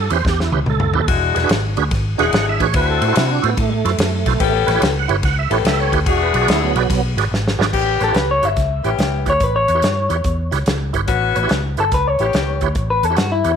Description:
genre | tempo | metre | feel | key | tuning
electric blues shuffle | 144 BPM | 4/4 | swing 66% on 8ths | A mixolydian | A4 = 440 Hz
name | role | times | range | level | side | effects
tonewheel organ | accompaniment | 0.0-13.5 s | F#3 to F#5 | -21 LUFS | right 12 dB | slow rotary speaker, chorus vibrato
vintage muted fingered electric bass | bass | 0.0-13.6 s | E1 to C3 | -20 LUFS | equal | none
natural country drum kit | drums | 0.1-13.5 s | crash cymbal, hi-hat, kick drum, ride cymbal, snare drum, toms | -21 LUFS | equal | none
edgy saxophone section | stabs | 1.1-12.7 s | G#3 to A4 | -21 LUFS | left 9 dB | none
electric guitar through a small old amp | melody | 8.0-13.6 s | E4 to E5 | -18 LUFS | left 3 dB | slapback echo
room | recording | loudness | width
moderate echo chamber reverb, RT60 1.3 s, studio ambience | 1960s-style stereo with parts hard left and right | -15 LUFS | side -7 dB against mid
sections
0.0-7.7 A section; 7.7-13.6 B section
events
drum fill 0.2-1.1, 7.3-7.7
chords
0.0 A9; 1.1 E9; 2.7 D9; 4.4 A9; 6.1 E9; 7.7 A9

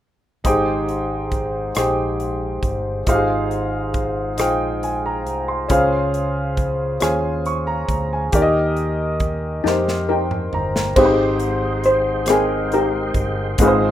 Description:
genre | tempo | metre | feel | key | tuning
slow gospel | 46 BPM (dotted quarters) | 6/8 | straight | Ab major | A4 = 440 Hz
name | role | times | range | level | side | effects
clear grand piano | accompaniment | 0.4-13.9 s | Ab2 to Db6 | -20 LUFS | left 1 dB | plate reverb
fingered electric bass | bass | 0.4-13.9 s | G1 to F2 | -26 LUFS | right 1 dB | none
modern studio drum kit | drums | 0.4-13.8 s | crash cymbal, hi-hat, kick drum, rim click, snare drum, toms | -24 LUFS | right 1 dB | none
steel pan | melody | 9.6-13.9 s | C4 to C5 | -18 LUFS | left 1 dB | plate reverb
tonewheel organ | sustained chords | 11.0-13.9 s | Ab3 to C6 | -29 LUFS | right 3 dB | slow rotary speaker, overdrive, chorus vibrato, plate reverb
room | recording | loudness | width
moderate small room reverb, RT60 0.6 s | rough home demo mix | -17 LUFS | side -12 dB against mid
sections
0.4-11.0 A section; 11.0-13.9 B section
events
drum fill 9.6-11.0; grand piano fill 9.6-11.0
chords
0.4 Abmaj7; 3.1 Fm7/Ab; 5.7 Dbmaj7; 8.3 Eb; 11.0 Abmaj7

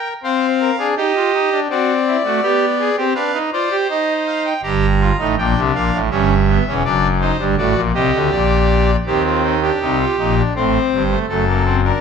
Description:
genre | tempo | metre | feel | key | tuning
classical, baroque-style 4-part fugue for pipe organ | 82 BPM | 3/4 | straight | unclear | A4 = 440 Hz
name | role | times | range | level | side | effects
pipe organ, trumpet | solo | 0.0-12.0 s | E1 to Bb5 | -14 LUFS | equal | none
room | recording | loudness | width
wet stone room reverb, RT60 1.0 s | dark, warm production | -14 LUFS | side -6 dB against mid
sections
0.0-9.1 A section; 9.1-12.0 B section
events
none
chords
0.2 Cm; 1.7 D7/C; 2.4 G7/B; 3.9 Cm/Eb; 4.6 Gm; 6.1 Em6; 6.8 D7/F#; 8.3 Gm/Bb; 9.1 Ebmaj7; 10.6 Gsus24; 11.3 D/F#

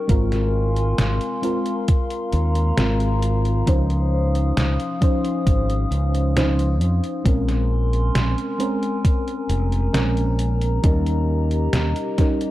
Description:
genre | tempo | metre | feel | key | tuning
vaporwave | 67 BPM | 4/4 | straight | Db lydian | A4 = 439 Hz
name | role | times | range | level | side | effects
mellow FM electric piano | accompaniment | 0.0-12.5 s | F3 to C5 | -24 LUFS | left 1 dB | analog chorus, tape echo
warbly tape-like pad | sustained chords | 0.0-12.5 s | Db4 to Eb6 | -29 LUFS | left 1 dB | chorus, built-in reverb
modern bright fingered electric bass | bass | 0.1-11.9 s | F1 to F2 | -20 LUFS | equal | tube saturation
detuned 8-bit digital drum machine | drums | 0.1-12.5 s | hi-hat, snare drum | -26 LUFS | equal | overdrive, gated reverb
electronic kick drum | drums | 0.1-12.4 s | none | -18 LUFS | equal | overdrive
room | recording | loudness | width
digital ambience | cassette tape | -18 LUFS | side -15 dB against mid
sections
0.0-12.5 A section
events
none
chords
0.1 Ab69; 3.7 Dbmaj9; 7.3 Bbm9; 10.8 Eb7

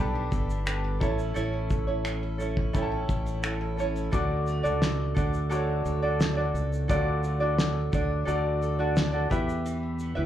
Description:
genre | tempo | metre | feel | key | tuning
acoustic pop | 87 BPM | 4/4 | straight | D major | A4 = 440 Hz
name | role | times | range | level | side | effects
tenor ukulele | accompaniment | 0.0-10.3 s | C#4 to E5 | -31 LUFS | right 2 dB | plate reverb, slapback echo
warm upright piano | accompaniment | 0.0-10.3 s | E4 to A5 | -35 LUFS | left 5 dB | plate reverb, slapback echo
picked steel-string acoustic guitar | arpeggios | 0.0-10.3 s | E3 to A4 | -36 LUFS | right 7 dB | digital delay, slapback echo
fingered electric bass | bass | 0.0-10.3 s | G1 to E2 | -29 LUFS | equal | none
cloth-damped thuddy drum kit | drums | 0.3-10.2 s | finger snaps, kick drum, shaker, snare drum | -28 LUFS | equal | none
room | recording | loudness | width
light reverb | live gig heard through the venue's PA, club reverb | -25 LUFS | side -11 dB against mid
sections
0.0-4.1 A section; 4.1-10.3 B section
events
none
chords
0.0 Gadd9/B; 1.0 A; 4.1 D; 9.3 Em

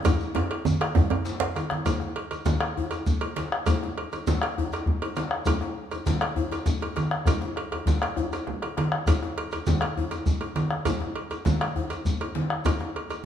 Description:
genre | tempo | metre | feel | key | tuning
west african traditional, West African drum ensemble | 133 BPM (dotted quarters) | 12/8 | straight | none | none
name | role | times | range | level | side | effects
djembe | percussion | 0.0-1.5 s | none | -27 LUFS | right 4 dB | none
shekere | percussion | 0.0-13.2 s | none | -38 LUFS | left 1 dB | none
bombo | percussion | 0.1-12.9 s | none | -27 LUFS | left 2 dB | none
congas | percussion | 0.1-13.2 s | none | -31 LUFS | right 3 dB | none
cowbell | percussion | 0.1-13.2 s | none | -33 LUFS | right 3 dB | none
djembe | percussion | 0.1-13.2 s | none | -32 LUFS | left 4 dB | none
room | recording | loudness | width
moderate recital hall reverb, RT60 1.5 s | small room ambience | -24 LUFS | side -9 dB against mid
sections
0.0-1.9 A section; 1.9-13.2 B section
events
drum fill 0.0-1.9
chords
none

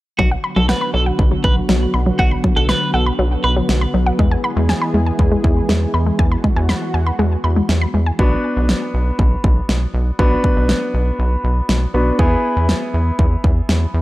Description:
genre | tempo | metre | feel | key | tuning
synth-pop | 120 BPM | 4/4 | straight | B dorian | A4 = 439 Hz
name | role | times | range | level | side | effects
twelve-string electric guitar | second line | 0.2-3.5 s | F#4 to B4 | -22 LUFS | right 2 dB | analog delay
lush unison pad | sustained chords | 0.4-8.2 s | D3 to G#4 | -23 LUFS | equal | chorus
wide unison pluck | arpeggios | 0.2-8.1 s | F#3 to B5 | -21 LUFS | left 1 dB | analog delay
rubbery square bass | bass | 0.2-14.0 s | B1 to E2 | -17 LUFS | equal | none
pop drum kit | drums | 0.2-13.8 s | kick drum, snare drum | -18 LUFS | equal | overdrive
bright concert grand piano | accompaniment | 8.2-14.0 s | B3 to B4 | -20 LUFS | equal | none
room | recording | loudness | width
digital ambience | dry, gritty hardware recording | -14 LUFS | side -17 dB against mid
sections
0.2-8.2 A section; 8.2-14.0 B section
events
none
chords
0.2 Bm; 4.2 E; 8.2 Bm; 12.2 E

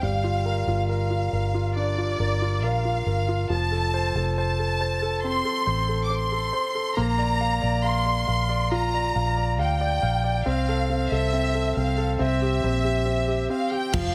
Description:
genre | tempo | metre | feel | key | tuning
pop ballad | 69 BPM | 4/4 | straight | F major | A4 = 440 Hz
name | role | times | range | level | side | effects
warm symphonic violin section | melody | 0.0-14.1 s | D5 to D6 | -29 LUFS | equal | none
warm concert grand piano | accompaniment | 0.0-14.1 s | F3 to F5 | -30 LUFS | equal | none
vintage muted fingered electric bass | bass | 0.0-14.1 s | F1 to D2 | -28 LUFS | equal | none
modern studio drum kit | drums | 13.9-14.1 s | crash cymbal, kick drum, toms | -31 LUFS | equal | none
room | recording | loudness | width
light reverb, small room ambience | none | -24 LUFS | mono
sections
0.0-13.9 A section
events
none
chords
0.0 Gm7; 3.5 F; 7.0 Bb; 10.5 Fmaj7/C; 12.2 C7

